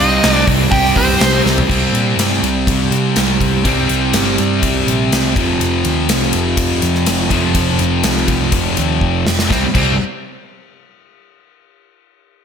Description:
hard rock; 123 BPM; 4/4; straight; A4 = 440 Hz
nasal lead guitar with a parked wah; melody; 0.0-1.4 s; C5 to G5; -17 LUFS; right 1 dB; overdrive, slapback echo
octave-fuzz lead guitar; second line; 0.0-1.4 s; C4 to G4; -24 LUFS; right 1 dB; distortion, slapback echo
high-gain distorted guitar; riff; 0.0-9.9 s; F2 to C4; -18 LUFS; left 10 dB; distortion
sludgy distorted guitar; riff; 0.0-9.9 s; F2 to C4; -18 LUFS; right 8 dB; overdrive
hollow-body short-scale picked electric bass; bass; 0.0-10.0 s; F1 to C3; -20 LUFS; left 1 dB
gated 80s drum kit; drums; 0.2-9.9 s; crash cymbal, hi-hat, kick drum, ride cymbal, snare drum, toms; -18 LUFS; equal
moderate lush hall reverb, RT60 1.7 s; big arena sound; -12 LUFS; side -7 dB against mid
0.0-1.7 A section; 1.7-9.5 B section; 9.5-11.5 C section
drum fill 1.5, 9.0-9.5
0.0 Cm; 1.7 C5; 5.4 F5; 9.5 C5
0.23 0.72 1.21 | 1.70 2.18 2.67 3.16 | 3.65 4.13 4.62 5.11 | 5.60 6.09 6.58 7.06 | 7.55 8.04 8.53 9.02 | 9.50

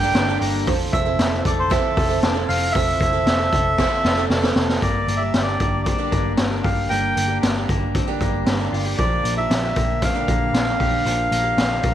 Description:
jangly indie pop; 116 BPM; 4/4; straight; G dorian; A4 = 440 Hz
melodica; melody; 0.0-11.9 s; C5 to G5; -23 LUFS; equal; slapback echo
glockenspiel with brass mallets; second line; 0.0-4.3 s; C6 to G6; -36 LUFS; right 8 dB
picked twelve-string acoustic guitar; accompaniment; 0.0-11.9 s; G2 to A4; -27 LUFS; right 11 dB
electric guitar through a small old amp; arpeggios; 0.0-11.9 s; F3 to A4; -28 LUFS; left 10 dB
vintage muted picked electric bass; bass; 0.0-11.9 s; F1 to Bb1; -25 LUFS; equal
raw garage drum kit; drums; 0.1-11.9 s; hi-hat, kick drum, snare drum; -22 LUFS; equal
light reverb, studio reverb; 1960s-style stereo with parts hard left and right, vinyl crackle; -18 LUFS; side -11 dB against mid
0.0-4.8 A section; 4.8-11.9 B section
drum fill 3.8-4.8
0.0 Gm; 0.7 Fmaj7; 4.8 Gm; 9.0 Bb6
0.16 | 0.67 1.19 1.71 2.23 | 2.75 3.27 3.79 4.31 | 4.83 5.34 5.86 6.38 | 6.90 7.42 7.94 8.46 | 8.98 9.50 10.02 10.54 | 11.06 11.58

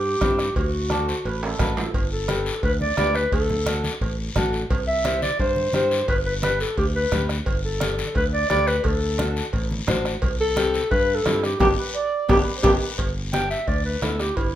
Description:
latin, cumbia; 174 BPM; 4/4; straight; G major; A4 = 440 Hz
dark clarinet; melody; 0.0-14.6 s; E4 to G5; -23 LUFS; equal
fingered electric bass; bass; 0.0-14.6 s; G1 to G2; -27 LUFS; equal
nylon-string guitar; accompaniment; 0.2-14.3 s; B3 to D5; -27 LUFS; left 3 dB
bombo; percussion; 0.2-14.5 s; -27 LUFS; equal
congas; percussion; 0.2-14.5 s; -30 LUFS; right 1 dB
cowbell and timbales; percussion; 0.2-14.5 s; -32 LUFS; right 4 dB
guiro; percussion; 0.2-14.6 s; -33 LUFS; left 5 dB
mellow accordion; second line; 0.9-1.9, 11.8-13.0 s; A4 to D5; -29 LUFS; right 5 dB
moderate large studio reverb, RT60 0.8 s; minimal, uncompressed stereo recording; -20 LUFS; side -12 dB against mid
0.0-1.9 A section; 1.9-13.0 B section; 13.0-14.6 C section
drum fill 1.4-1.9, 12.3-13.0; band accent 11.6-13.0; clarinet solo 13.0-14.6
0.0 C; 0.6 D; 1.9 G; 3.3 D; 4.7 C; 6.1 G; 8.8 D7; 10.2 C; 11.6 G
0.21 | 0.56 0.91 1.25 1.60 | 1.94 2.29 2.63 2.98 | 3.32 3.67 4.01 4.36 | 4.70 5.05 5.39 5.74 | 6.08 6.43 6.78 7.12 | 7.46 7.81 8.15 8.50 | 8.85 9.19 9.54 9.88 | 10.23 10.57 10.92 11.26 | 11.61 11.95 12.30 12.64 | 12.99 13.33 13.68 14.03 | 14.37

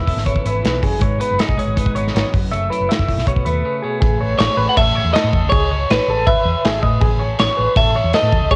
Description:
math rock and midwest emo; 160 BPM; 4/4; straight; A4 = 444 Hz
twelve-string electric guitar; accompaniment; 0.0-5.5 s; E2 to A4; -28 LUFS; equal; warbly pitch drift, cassette tape
electric guitar through a small old amp; arpeggios; 0.0-8.6 s; G#4 to E5; -24 LUFS; equal; tremolo, cassette tape, tape echo
hollow-body short-scale fingered electric bass; bass; 0.0-8.6 s; E1 to A2; -23 LUFS; equal
modern studio drum kit; drums; 0.1-8.6 s; crash cymbal, hi-hat, kick drum, snare drum; -21 LUFS; equal; cassette tape
twelve-string electric guitar; melody; 4.4-8.6 s; B4 to F#5; -20 LUFS; equal; cassette tape
light reverb; home recording on cassette; -17 LUFS; mono
0.0-4.0 A section; 4.0-8.6 B section
break 3.6-4.0
0.0 E69; 1.0 G#m; 2.3 F#m7; 3.3 Bsus2; 4.0 Amaj9
0.27 0.64 | 1.02 1.39 1.77 2.15 | 2.52 2.90 3.27 3.65 | 4.02 4.40 4.77 5.15 | 5.52 5.90 6.27 6.64 | 7.02 7.39 7.76 8.14 | 8.51

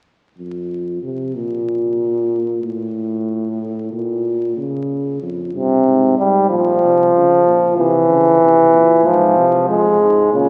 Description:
classical, imitative canzona for brass ensemble; 94 BPM; 4/4; straight; A4 = 441 Hz
dark bass trombone; bass; 0.4-10.5 s; F2 to Db3; -23 LUFS; equal
clear trombone; accompaniment; 5.5-10.5 s; C3 to Ab3; -14 LUFS; equal
wet church reverb, RT60 3.6 s; very old 78 rpm record, vinyl crackle; -16 LUFS; mono
0.1-10.5 A section
0.1 F5; 1.4 N.C.; 3.9 Bbm; 5.2 Fm; 6.5 Bbm; 7.8 C; 9.1 Fm/Ab
| 0.06 0.71 1.35 2.00 | 2.64 3.29 3.93 4.57 | 5.21 5.86 6.50 7.14 | 7.78 8.42 9.06 9.70 | 10.33

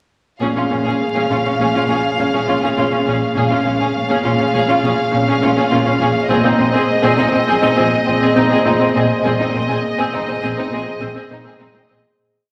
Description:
cinematic, suspense film score; 102 BPM; 5/4; straight; Bb minor; A4 = 440 Hz
dark studio violin section; melody; 0.4-11.9 s; Eb5 to F5; -24 LUFS; equal
rich studio violin section; second line; 0.4-12.0 s; C4 to Ab4; -24 LUFS; equal
rich studio viola section; accompaniment; 0.4-11.9 s; C4 to Db4; -22 LUFS; equal
glass harmonica; sustained chords; 0.4-12.1 s; Ab4 to F5; -25 LUFS; equal
dark studio cello section; riff; 0.4-12.1 s; Bb2 to Bb3; -26 LUFS; equal
dark studio double bass section; bass; 0.4-12.0 s; Bb1; -30 LUFS; equal
warm studio cello section; bass; 0.4-12.0 s; Bb2; -26 LUFS; equal
wet scoring stage reverb, RT60 1.7 s; vinyl crackle; -16 LUFS; mono
0.4-12.2 A section
fade-out 9.2-12.2
0.4 Bbm7; 6.3 Ab/Bb
| 0.42 1.01 1.60 2.19 2.77 | 3.36 3.95 4.54 5.13 5.72 | 6.30 6.89 7.48 8.07 8.66 | 9.25 9.83 10.42 11.01 11.60

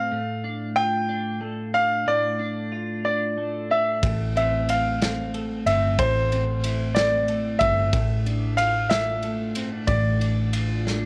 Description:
six-eight pop ballad; 61 BPM (dotted quarters); 6/8; straight; A4 = 440 Hz
clear baby grand piano; melody; 0.0-10.8 s; C5 to G5; -26 LUFS; equal
twelve-string electric guitar; accompaniment; 0.0-11.1 s; A2 to F4; -32 LUFS; equal; analog chorus, cassette tape
vintage muted fingered electric bass; bass; 4.0-11.1 s; G1 to A1; -28 LUFS; equal
modern studio drum kit; drums; 4.0-11.0 s; kick drum, ride cymbal, snare drum; -32 LUFS; equal
light reverb; home recording on cassette; -24 LUFS; mono
0.0-11.1 A section
drum fill 10.9
0.1 Dm/A; 4.0 Am; 7.9 Dm
| 0.11 1.08 | 2.06 3.04 | 4.03 5.01 | 5.99 6.96 | 7.93 8.90 | 9.88 10.86

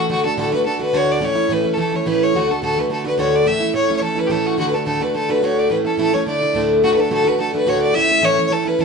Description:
celtic folk, Celtic reel; 214 BPM; 4/4; straight; D major; A4 = 440 Hz
rich fiddle; melody; 0.0-8.8 s; F#4 to E5; -19 LUFS; left 2 dB
picked plugged-in steel-string acoustic guitar; accompaniment; 0.0-8.8 s; D2 to F#4; -18 LUFS; right 1 dB
wet studio ambience, RT60 0.5 s; band playing live in one room, nothing above 10.6 kHz; -15 LUFS; side -5 dB against mid
0.0-6.8 A section; 6.8-8.8 A section
0.1 D; 1.2 A; 2.3 D; 3.5 A; 4.6 D; 5.7 A; 6.3 Dsus2; 6.8 D; 8.0 A
| 0.09 0.38 0.66 0.94 | 1.22 1.50 1.78 2.06 | 2.34 2.62 2.90 3.19 | 3.47 3.75 4.03 4.31 | 4.59 4.87 5.15 5.43 | 5.71 5.99 6.27 6.55 | 6.83 7.12 7.39 7.67 | 7.95 8.23 8.51 8.79

